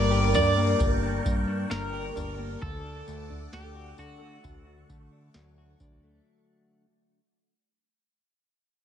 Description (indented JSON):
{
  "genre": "dream pop",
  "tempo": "66 BPM",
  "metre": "4/4",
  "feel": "straight",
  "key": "D major",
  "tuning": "A4 = 438 Hz",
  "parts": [
    { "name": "electric guitar at the edge of break-up", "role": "melody", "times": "0.0-4.9 s", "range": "F#4 to D5", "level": "-30 LUFS", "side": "equal", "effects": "wide subtle chorus, analog delay" },
    { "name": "phased string machine", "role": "sustained chords", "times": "0.0-6.2 s", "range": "A4 to D6", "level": "-34 LUFS", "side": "right 3 dB", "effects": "ensemble chorus, phaser" },
    { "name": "direct-recorded clean electric guitar", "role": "arpeggios", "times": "0.0-6.8 s", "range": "G2 to G4", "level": "-32 LUFS", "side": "left 4 dB", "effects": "wide subtle chorus, analog delay" },
    { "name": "fat analog bass", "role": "bass", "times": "0.0-6.2 s", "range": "G1 to D3", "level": "-30 LUFS", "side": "equal", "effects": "none" },
    { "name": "booming analog drum machine", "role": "drums", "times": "0.3-6.0 s", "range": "kick drum, snare drum, tambourine, toms", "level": "-30 LUFS", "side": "equal", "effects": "none" }
  ],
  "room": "light reverb, digital ambience",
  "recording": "echo-heavy mix",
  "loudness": "-24 LUFS",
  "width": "side -9 dB against mid",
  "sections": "0.0-6.3 A section",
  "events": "fade-out 0.0-6.3",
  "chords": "0.0 Gm; 2.6 D"
}